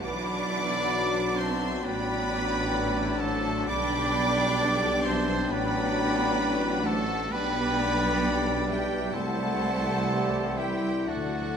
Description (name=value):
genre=classical, slow romantic movement for symphony orchestra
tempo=65 BPM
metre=4/4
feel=uneven beats, rubato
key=G major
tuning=A4 = 438 Hz
part: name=warm symphonic violin section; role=melody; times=0.0-11.6 s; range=F#5 to D6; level=-34 LUFS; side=left 1 dB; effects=none
part: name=clear oboe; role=second line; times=0.0-11.6 s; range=C5 to D5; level=-37 LUFS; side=equal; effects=none
part: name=mellow clarinet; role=second line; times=0.0-11.6 s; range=D4 to F#4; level=-38 LUFS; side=left 3 dB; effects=none
part: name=mellow hollow small flute group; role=second line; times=0.0-11.6 s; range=D5 to B5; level=-35 LUFS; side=equal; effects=none
part: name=warm symphonic violin section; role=second line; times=0.0-11.6 s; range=A4 to G5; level=-38 LUFS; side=left 4 dB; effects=none
part: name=mellow bassoon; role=accompaniment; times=0.0-11.6 s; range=F#3 to A3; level=-37 LUFS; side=equal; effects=none
part: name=rich studio viola section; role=accompaniment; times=0.0-11.6 s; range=D3 to G4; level=-36 LUFS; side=right 2 dB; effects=none
part: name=warm trumpet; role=stabs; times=0.0-11.6 s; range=F#4 to D5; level=-33 LUFS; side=right 2 dB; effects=none
part: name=rich symphonic cello section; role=bass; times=0.0-11.6 s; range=F#3 to D4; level=-34 LUFS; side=right 2 dB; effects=none
part: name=rich symphonic double bass section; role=bass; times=0.0-11.6 s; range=A1 to D2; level=-35 LUFS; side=right 3 dB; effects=none
part: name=warm tuba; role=bass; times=0.0-11.6 s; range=A1 to D2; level=-35 LUFS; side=right 4 dB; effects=none
part: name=mellow French horn section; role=sustained chords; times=0.1-11.6 s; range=F#3 to F#4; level=-33 LUFS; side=left 6 dB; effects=none
part: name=timpani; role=percussion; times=11.1-11.6 s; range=D3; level=-39 LUFS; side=left 3 dB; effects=none
room=moderate scoring stage reverb, RT60 1.8 s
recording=none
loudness=-24 LUFS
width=side -7 dB against mid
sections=0.0-11.6 A section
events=timpani fill 11.1-11.6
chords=0.0 Bm; 1.8 D/A; 3.7 G/B; 5.5 D/A; 7.3 G/B; 9.1 C